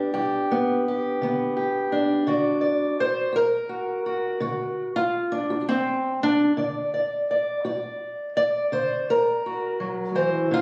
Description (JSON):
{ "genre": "acoustic country blues, solo or duo", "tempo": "56 BPM (dotted quarters)", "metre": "12/8", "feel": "straight", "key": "unclear", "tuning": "A4 = 440 Hz", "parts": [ { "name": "fingerpicked steel-string acoustic guitar", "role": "solo", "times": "0.0-10.6 s", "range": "G2 to D5", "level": "-24 LUFS", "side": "equal", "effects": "none" } ], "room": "moderate small room reverb, RT60 0.5 s", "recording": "recorded on a phone in the room, studio reverb, compression", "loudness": "-24 LUFS", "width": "mono", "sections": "0.0-10.6 A section", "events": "none", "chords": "0.0 G; 2.3 D", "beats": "0.11 1.18 | 2.26 3.33 4.41 5.49 | 6.56 7.64 8.71 9.79" }